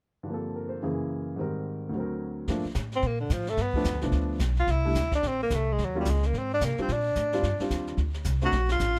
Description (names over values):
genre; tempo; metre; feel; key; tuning
jazz, small-group swing and bop; 218 BPM; 4/4; swing 60% on 8ths; G minor; A4 = 440 Hz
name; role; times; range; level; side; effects
warm baby grand piano; accompaniment; 0.2-8.5 s; D2 to C5; -33 LUFS; equal; none
upright bass; bass; 2.5-9.0 s; A1 to C3; -31 LUFS; equal; none
jazz brush drum kit; drums; 2.5-9.0 s; brushed snare drum, hi-hat, kick drum, snare drum; -37 LUFS; equal; none
warm tenor saxophone; melody; 3.0-9.0 s; D3 to F#4; -30 LUFS; equal; none
room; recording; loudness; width
little or no reverb; close, detailed microphones; -28 LUFS; mono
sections
0.3-2.5 A section; 2.5-9.0 B section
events
none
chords
0.3 Gm11; 0.8 F#9; 1.4 Abmaj7; 1.9 D7b13; 2.5 Gm9; 3.6 G7; 4.7 C69; 5.8 Ebm7; 6.3 Ab; 6.9 Bb69; 8.0 D7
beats
| 0.28 0.55 0.83 1.10 | 1.38 1.66 1.93 2.21 | 2.48 2.76 3.03 3.31 | 3.58 3.86 4.13 4.41 | 4.68 4.96 5.23 5.51 | 5.78 6.06 6.33 6.61 | 6.88 7.16 7.43 7.71 | 7.99 8.26 8.54 8.81